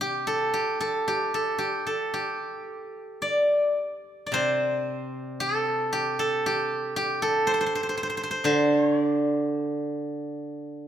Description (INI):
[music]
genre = chinese traditional, Chinese solo plucked strings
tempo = 53-62 BPM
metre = 4/4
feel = rubato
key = unclear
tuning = A4 = 439 Hz
[part]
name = steel-string zither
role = solo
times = 0.0-10.9 s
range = C3 to D5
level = -24 LUFS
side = right 1 dB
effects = none
[sound]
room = moderate concert hall reverb, RT60 2.3 s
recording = minimal, uncompressed stereo recording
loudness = -24 LUFS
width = side -10 dB against mid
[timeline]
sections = 0.0-4.3 A section; 4.3-10.9 B section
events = none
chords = none